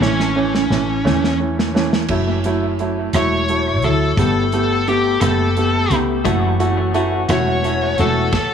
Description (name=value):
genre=six-eight pop ballad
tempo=58 BPM (dotted quarters)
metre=6/8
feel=straight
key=unclear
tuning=A4 = 438 Hz
part: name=high-gain lead guitar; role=melody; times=0.0-8.5 s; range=C#4 to C#5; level=-21 LUFS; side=left 1 dB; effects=distortion, dub echo
part: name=clear upright piano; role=accompaniment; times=0.0-8.3 s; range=E3 to G4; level=-19 LUFS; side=right 2 dB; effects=dub echo
part: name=woody fretless electric bass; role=bass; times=0.0-8.3 s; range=E1 to E2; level=-21 LUFS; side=equal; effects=none
part: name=modern studio drum kit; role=drums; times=0.0-8.5 s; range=crash cymbal, hi-hat, kick drum, rim click, snare drum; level=-23 LUFS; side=equal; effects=dub echo
part: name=direct-recorded clean electric guitar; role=arpeggios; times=6.2-8.3 s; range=F#2 to F#4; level=-24 LUFS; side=left 10 dB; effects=dub echo
room=light reverb, small room ambience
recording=echo-heavy mix, studio reverb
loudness=-15 LUFS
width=side -7 dB against mid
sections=0.0-2.1 A section; 2.1-8.5 B section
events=drum fill 0.0-2.1, 8.3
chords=0.0 A; 2.1 F#m7; 4.2 Gadd9; 6.3 F#m7